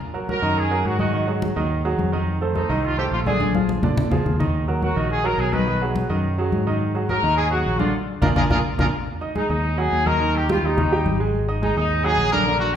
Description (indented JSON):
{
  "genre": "latin, salsa",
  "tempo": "212 BPM",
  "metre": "4/4",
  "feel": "straight",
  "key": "Eb minor",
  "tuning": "A4 = 440 Hz",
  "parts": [
    { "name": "congas", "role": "percussion", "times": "0.0-12.8 s", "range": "none", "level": "-26 LUFS", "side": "left 2 dB", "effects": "none" },
    { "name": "bright concert grand piano", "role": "accompaniment", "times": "0.1-12.7 s", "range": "D3 to Eb6", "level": "-24 LUFS", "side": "right 3 dB", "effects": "none" },
    { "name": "clear horn section", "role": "melody", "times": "0.3-12.7 s", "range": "Eb4 to Cb5", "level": "-23 LUFS", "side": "left 1 dB", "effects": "none" },
    { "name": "fingered electric bass", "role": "bass", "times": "0.4-12.8 s", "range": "Ab1 to Bb2", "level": "-24 LUFS", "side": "equal", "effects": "none" }
  ],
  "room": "wet recital hall reverb, RT60 1.4 s",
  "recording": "recorded in a church or concert hall",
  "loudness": "-19 LUFS",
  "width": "side -9 dB against mid",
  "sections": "0.0-9.1 A section; 9.1-12.8 B section",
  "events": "drum fill 3.4-4.5, 8.7-9.1; band accent 7.9-9.1",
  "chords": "0.0 Ebm; 1.1 Ab5; 2.3 F7; 3.4 Bb7; 4.5 Ebm; 5.7 B6; 6.8 Ab5; 7.9 Bb7; 9.1 Ab5; 10.2 Eb; 11.3 Ab5"
}